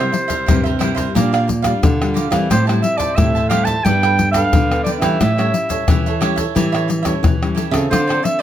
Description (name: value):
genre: samba and choro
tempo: 89 BPM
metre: 4/4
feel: straight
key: unclear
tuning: A4 = 440 Hz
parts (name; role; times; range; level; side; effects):
- bright clarinet; melody; 0.0-8.4 s; C5 to A5; -20 LUFS; right 1 dB; tape echo
- cavaquinho; accompaniment; 0.0-8.4 s; D4 to A5; -23 LUFS; right 7 dB; none
- nylon-string guitar; accompaniment; 0.0-8.4 s; G2 to A4; -23 LUFS; left 4 dB; none
- nylon-string guitar; bass; 0.0-8.2 s; G2 to E3; -19 LUFS; right 2 dB; none
- pandeiro, egg shaker, surdo and tamborim; percussion; 0.1-8.4 s; none; -19 LUFS; left 3 dB; none
room: light reverb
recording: close, detailed microphones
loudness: -14 LUFS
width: side -11 dB against mid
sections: 0.0-8.4 A section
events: none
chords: 0.0 C7; 1.2 Gm7/Bb; 2.5 Am7; 3.9 Gadd9; 5.2 A7; 7.9 Dm7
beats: 0.48 1.16 1.83 | 2.51 3.19 3.86 4.54 | 5.21 5.88 6.56 7.24 | 7.91